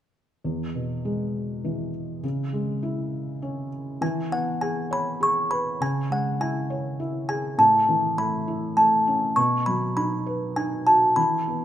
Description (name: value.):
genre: children's music, lullaby.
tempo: 101 BPM.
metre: 3/4.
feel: straight.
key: E major.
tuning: A4 = 438 Hz.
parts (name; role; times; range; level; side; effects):
felt-muted upright piano; accompaniment; 0.4-11.6 s; E2 to C#5; -27 LUFS; equal; none.
music box; melody; 4.0-11.6 s; F#5 to C#6; -21 LUFS; equal; none.
room: moderate recital hall reverb, RT60 1.6 s.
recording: minimal, uncompressed stereo recording.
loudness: -22 LUFS.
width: side -11 dB against mid.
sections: 0.4-4.0 A section; 4.0-11.6 B section.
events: none.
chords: 0.4 E; 2.2 C#m; 4.0 E6; 5.8 C#m; 7.6 Aadd9; 9.4 B.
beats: | 0.45 1.04 1.64 | 2.23 2.82 3.42 | 4.02 4.62 5.21 | 5.81 6.40 6.99 | 7.58 8.17 8.77 | 9.36 9.96 10.56 | 11.17.